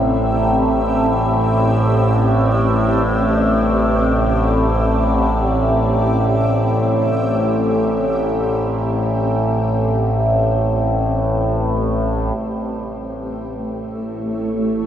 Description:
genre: dark ambient drone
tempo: free time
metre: none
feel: none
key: unclear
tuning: A4 = 443 Hz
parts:
  - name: granular cloud pad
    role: sustained chords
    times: 0.0-14.9 s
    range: A3 to E5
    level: -22 LUFS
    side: equal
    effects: built-in reverb, shimmer reverb
  - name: overtone-sweeping drone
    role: drone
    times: 0.0-14.9 s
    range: A1 to A2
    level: -16 LUFS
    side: equal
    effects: chorus, built-in reverb, phaser
room: wet huge ambient reverb, RT60 7.5 s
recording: none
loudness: -15 LUFS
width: side -10 dB against mid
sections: 0.0-12.4 A section; 12.4-14.9 B section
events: fade-out on ambient pad 0.0-12.4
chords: 0.0 Cadd9; 12.4 A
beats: free time

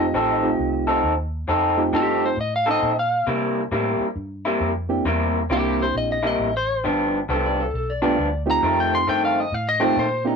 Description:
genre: electric blues shuffle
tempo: 134 BPM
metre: 4/4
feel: swing 63% on 8ths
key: unclear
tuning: A4 = 440 Hz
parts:
  - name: lightly driven lead guitar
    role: melody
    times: 0.0-10.3 s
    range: G4 to C6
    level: -23 LUFS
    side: left 1 dB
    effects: none
  - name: barky reed electric piano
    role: accompaniment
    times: 0.0-10.4 s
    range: A3 to G4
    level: -24 LUFS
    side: right 3 dB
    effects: none
  - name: electric guitar through a small old amp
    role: riff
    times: 0.0-10.1 s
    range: F2 to A4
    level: -21 LUFS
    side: equal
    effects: none
  - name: vintage muted fingered electric bass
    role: bass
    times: 0.0-10.4 s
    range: F1 to C3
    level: -29 LUFS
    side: equal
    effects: none
  - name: electric slide guitar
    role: second line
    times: 7.3-10.4 s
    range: Eb4 to D5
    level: -28 LUFS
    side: left 3 dB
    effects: none
room: moderate small room reverb, RT60 0.5 s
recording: rough rehearsal-room recording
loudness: -19 LUFS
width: side -5 dB against mid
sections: 0.0-10.4 A section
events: none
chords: 0.0 F7; 3.3 C7; 6.8 G7; 8.6 F7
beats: 0.14 0.59 1.04 | 1.48 1.93 2.38 2.83 | 3.27 3.72 4.17 4.61 | 5.06 5.51 5.95 6.40 | 6.84 7.29 7.74 8.18 | 8.63 9.07 9.52 9.97

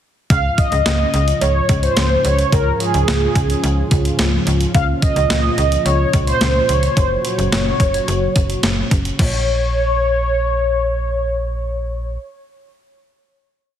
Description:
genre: synth-pop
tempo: 108 BPM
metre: 4/4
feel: straight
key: Bb minor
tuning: A4 = 439 Hz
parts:
  - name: mellow synth brass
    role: melody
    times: 0.3-12.2 s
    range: Ab4 to F5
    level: -19 LUFS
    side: equal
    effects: chorus, ping-pong delay
  - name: warm analog pad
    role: sustained chords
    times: 0.3-9.2 s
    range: Ab2 to Gb4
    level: -23 LUFS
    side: equal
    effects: chorus
  - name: slap-like FM bass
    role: bass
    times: 0.3-12.2 s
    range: Gb1 to Db2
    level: -19 LUFS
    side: equal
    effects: none
  - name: clean 12-bit digital drum machine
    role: drums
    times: 0.3-9.3 s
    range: crash cymbal, hi-hat, kick drum, snare drum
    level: -19 LUFS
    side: equal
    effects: none
room: moderate plate reverb, RT60 2.8 s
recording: heavily compressed radio sound, multiband compression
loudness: -14 LUFS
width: side -10 dB against mid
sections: 0.3-9.2 verse; 9.2-11.4 final chord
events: none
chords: 0.3 Db; 4.7 Bbm/Db; 7.0 Gb; 9.2 Bbm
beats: | 0.30 0.86 1.41 1.97 | 2.52 3.08 3.63 4.19 | 4.75 5.30 5.86 6.41 | 6.97 7.52 8.08 8.63 | 9.19 9.75 10.30 10.86

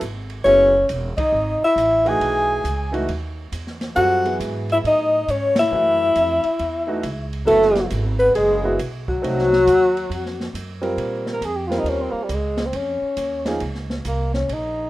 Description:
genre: modal jazz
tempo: 137 BPM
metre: 4/4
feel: swing 65% on 8ths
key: Bb dorian from 11.0 s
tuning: A4 = 440 Hz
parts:
  - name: upright bass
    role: bass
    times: 0.0-14.9 s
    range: E1 to Bb2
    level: -27 LUFS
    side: right 1 dB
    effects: none
  - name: open jazz drum kit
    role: drums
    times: 0.0-14.6 s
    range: hi-hat, kick drum, ride cymbal, snare drum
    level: -32 LUFS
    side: right 1 dB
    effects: none
  - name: breathy alto saxophone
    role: second line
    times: 0.4-10.5 s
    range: F#4 to G#5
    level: -19 LUFS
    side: left 1 dB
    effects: none
  - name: clear grand piano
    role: accompaniment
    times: 0.4-13.6 s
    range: E3 to A#4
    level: -26 LUFS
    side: right 1 dB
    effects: none
  - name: dark tenor saxophone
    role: melody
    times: 0.5-14.9 s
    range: F#3 to Bb4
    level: -21 LUFS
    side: equal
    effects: none
room: moderate plate reverb, RT60 1.6 s, small room ambience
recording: rough home demo mix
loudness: -17 LUFS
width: side -16 dB against mid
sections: 0.0-11.0 A section; 11.0-14.9 B section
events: band accent 1.1, 5.5; tenor saxophone solo 11.0-14.9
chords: 0.5 Eadd9; 4.0 F#m9; 7.5 Eadd9/F#; 9.2 F7b9; 11.0 Bbmadd9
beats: 0.02 | 0.46 0.90 1.34 1.77 | 2.21 2.65 3.09 3.53 | 3.97 4.41 4.84 5.28 | 5.72 6.16 6.60 7.04 | 7.48 7.91 8.35 8.79 | 9.23 9.67 10.11 10.54 | 10.98 11.42 11.86 12.30 | 12.73 13.17 13.61 14.05 | 14.49

